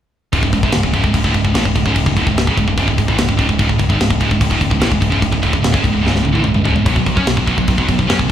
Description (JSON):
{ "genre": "heavy metal", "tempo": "147 BPM", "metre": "4/4", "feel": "straight", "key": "unclear", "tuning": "A4 = 439 Hz", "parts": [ { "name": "scooped high-gain guitar", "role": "riff", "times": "0.3-8.3 s", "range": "C#2 to C#4", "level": "-16 LUFS", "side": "right 1 dB", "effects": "distortion" }, { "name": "growling picked electric bass", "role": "bass", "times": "0.3-8.3 s", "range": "C#1 to F#2", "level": "-20 LUFS", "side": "equal", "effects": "overdrive" }, { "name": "tight metal drum kit", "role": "drums", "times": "0.3-8.3 s", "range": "crash cymbal, kick drum, snare drum, toms", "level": "-17 LUFS", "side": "equal", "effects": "none" } ], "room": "moderate large studio reverb, RT60 0.8 s", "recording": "band playing live in one room", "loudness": "-13 LUFS", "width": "side -10 dB against mid", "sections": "0.3-8.3 A section", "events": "drum fill 6.0-6.9", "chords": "0.3 C#5; 6.9 B5" }